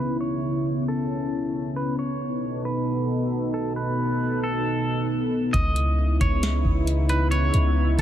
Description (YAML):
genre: hip hop, atmospheric cloud-rap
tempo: 135 BPM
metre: 4/4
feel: half-time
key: C# minor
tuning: A4 = 442 Hz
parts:
  - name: electric guitar at the edge of break-up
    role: melody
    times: 0.0-8.0 s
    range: A4 to D#5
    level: -30 LUFS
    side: right 1 dB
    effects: ping-pong delay
  - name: dark analog pad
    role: sustained chords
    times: 0.0-8.0 s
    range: B2 to A4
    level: -25 LUFS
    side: equal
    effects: chorus, sidechain pumping
  - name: clean 808-style bass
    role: bass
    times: 5.5-8.0 s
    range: C#2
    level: -21 LUFS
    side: equal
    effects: none
  - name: booming analog drum machine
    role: drums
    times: 5.5-8.0 s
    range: hi-hat, kick drum, snare drum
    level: -25 LUFS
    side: equal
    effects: none
room: little or no reverb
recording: heavily compressed radio sound, low-pass filter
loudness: -22 LUFS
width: side -11 dB against mid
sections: 0.0-5.5 A section; 5.5-8.0 B section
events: filter sweep 0.0-5.5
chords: 0.0 C#m9; 2.0 B7; 5.5 C#m9